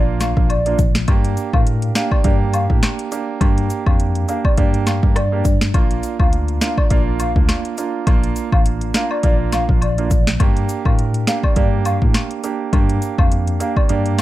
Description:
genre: dancehall.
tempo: 103 BPM.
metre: 4/4.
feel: swing 56% on 16ths.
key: unclear.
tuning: A4 = 440 Hz.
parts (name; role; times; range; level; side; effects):
hollow clarinet-like synth lead; melody; 0.0-14.2 s; D5 to F5; -25 LUFS; equal; chorus, tape echo.
warm grand piano; accompaniment; 0.0-14.2 s; Bb3 to Bb4; -24 LUFS; right 7 dB; sidechain pumping.
mellow tine electric piano; bass; 0.0-14.2 s; A1 to A2; -20 LUFS; equal; medium stereo tremolo.
afro-pop drum kit; drums; 0.2-14.2 s; hi-hat, kick drum, rim click, snare drum; -16 LUFS; equal; none.
cabasa and woodblock; percussion; 0.2-14.2 s; none; -31 LUFS; left 5 dB; none.
room: digital ambience.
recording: dark, warm production.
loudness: -15 LUFS.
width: side -15 dB against mid.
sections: 0.0-14.2 A section.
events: kick muted 13.9-14.2.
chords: 0.0 Bb; 1.1 Gm; 5.7 Bb; 10.4 Gm.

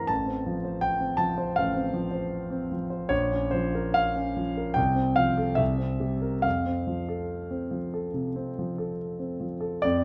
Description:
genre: classical, romantic character piece for solo piano.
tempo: 66-84 BPM.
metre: 4/4.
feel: rubato.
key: F major.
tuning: A4 = 439 Hz.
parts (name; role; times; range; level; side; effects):
warm concert grand piano; solo; 0.0-10.0 s; A1 to C6; -28 LUFS; equal; none.
room: moderate large studio reverb, RT60 0.9 s.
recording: none.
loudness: -28 LUFS.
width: mono.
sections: 0.0-9.8 A section.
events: none.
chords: 0.1 F/A; 3.1 Bbm; 4.8 F/C; 5.6 C7; 6.4 F.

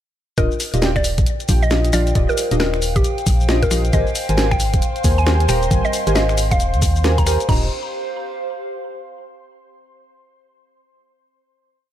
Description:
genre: UK garage, two-step garage.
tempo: 135 BPM.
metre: 4/4.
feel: swing 62% on 16ths.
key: Eb major.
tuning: A4 = 442 Hz.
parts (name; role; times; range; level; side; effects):
mallet-like synth pluck; melody; 0.4-7.7 s; G4 to Bb5; -25 LUFS; equal; chorus, ping-pong delay.
deep mellow chord stab; stabs; 0.4-7.7 s; G3 to Bb5; -24 LUFS; equal; chorus, tape echo.
organ-like FM bass; bass; 0.4-7.7 s; Eb1 to Eb2; -18 LUFS; equal; tube saturation, sidechain pumping.
electronic kick drum; drums; 0.4-7.6 s; none; -19 LUFS; equal; overdrive.
garage drum kit; drums; 0.4-7.6 s; crash cymbal, finger snaps, hi-hat, shaker, snare drum; -24 LUFS; left 1 dB; none.
warbly tape-like pad; texture; 1.4-9.2 s; G4 to G5; -28 LUFS; right 1 dB; chorus, built-in reverb, phaser, sidechain pumping.
ethereal airy pad; sustained chords; 4.6-7.5 s; C5 to C6; -32 LUFS; right 1 dB; ensemble chorus, built-in reverb, sidechain pumping.
room: light reverb, digital ambience.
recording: none.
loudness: -15 LUFS.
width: side -11 dB against mid.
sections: 0.4-7.5 drop; 7.5-9.3 final chord.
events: drop 0.4-7.5.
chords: 0.4 Ebmaj9; 3.9 Abmaj9; 7.5 Ebmaj9.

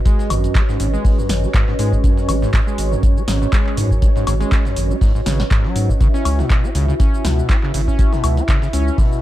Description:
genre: acid house.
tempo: 121 BPM.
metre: 4/4.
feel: swing 55% on 16ths.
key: G# minor.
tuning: A4 = 440 Hz.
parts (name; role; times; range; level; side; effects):
warm analog pad; sustained chords; 0.0-9.2 s; C#4 to E5; -26 LUFS; right 2 dB; chorus, sidechain pumping.
warbly tape-like pad; texture; 0.0-9.2 s; F#4 to E5; -28 LUFS; left 1 dB; chorus, built-in reverb, sidechain pumping.
overdriven acid bass; riff; 0.1-9.2 s; F#2 to C#4; -23 LUFS; equal; distortion, analog chorus, digital delay.
breakbeat sampler-style drum kit; drums; 0.1-9.1 s; hi-hat, snare drum; -38 LUFS; left 1 dB; high-pass filter on hats, high-pass filter on snare, high-pass filter on room.
electro analog drum machine; drums; 0.1-9.2 s; handclaps, hi-hat, shaker, snare drum, woodblock; -26 LUFS; left 1 dB; none.
electronic kick drum; drums; 0.1-9.1 s; none; -16 LUFS; equal; none.
saturated sub bass; bass; 0.3-8.9 s; G#1 to G#2; -19 LUFS; equal; sidechain pumping.
room: little or no reverb.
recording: dark, warm production.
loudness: -14 LUFS.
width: side -14 dB against mid.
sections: 0.0-9.2 A section.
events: none.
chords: 0.0 G#m7; 6.0 C#m7.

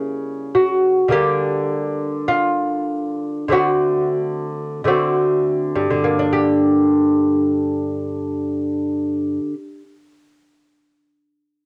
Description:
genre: classical, baroque-style dance for lute.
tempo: 40-54 BPM.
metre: 4/4.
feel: rubato.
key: G minor.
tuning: A4 = 442 Hz.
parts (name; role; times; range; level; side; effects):
lute; solo; 0.0-10.0 s; G2 to G4; -19 LUFS; equal; cassette tape.
room: light reverb.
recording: home recording on cassette.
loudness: -19 LUFS.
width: mono.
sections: 0.0-6.3 A section; 6.3-11.7 B section.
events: slowing down 0.0-6.3.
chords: 0.0 C#dim7; 1.1 Gm/D; 3.5 D7; 6.3 Gm.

